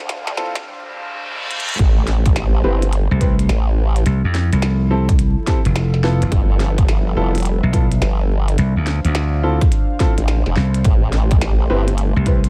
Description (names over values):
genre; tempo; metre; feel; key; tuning
glitch hop; 106 BPM; 4/4; swing 64% on 16ths; A minor; A4 = 440 Hz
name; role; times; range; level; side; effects
warm analog pad; sustained chords; 0.0-12.5 s; F3 to F5; -31 LUFS; equal; chorus, vintage 12-bit sampler grit, sidechain pumping
formant-sweep wobble bass; bass; 0.0-12.1 s; F1 to D2; -20 LUFS; equal; chorus, overdrive, high-pass filter
riser and reverse cymbal; sound effects; 0.7-1.8 s; none; -29 LUFS; equal; none
glitchy drum kit; drums; 0.1-12.5 s; hi-hat, snare drum; -29 LUFS; equal; studio reverb
warm grand piano; stabs; 0.4-12.4 s; B3 to B4; -26 LUFS; equal; sidechain pumping, dub echo
electronic kick drum; drums; 0.6-12.4 s; none; -18 LUFS; equal; high-pass filter on kick, studio reverb, high-pass filter on room
slap bass; bass; 3.1-12.5 s; F1 to F2; -19 LUFS; equal; none
room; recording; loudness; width
little or no reverb; vinyl crackle, high-pass filter; -17 LUFS; mono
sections
0.0-1.8 A section; 1.8-12.5 B section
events
build-up 0.0-1.8; drum fill 0.0-0.7, 1.5; riser 0.7-1.8; reverse cymbal 0.7-1.8; drop 1.8-12.5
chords
0.0 Dm7; 1.8 Am7; 4.1 Fmaj7; 6.3 G13; 8.6 Dm7; 10.8 Am7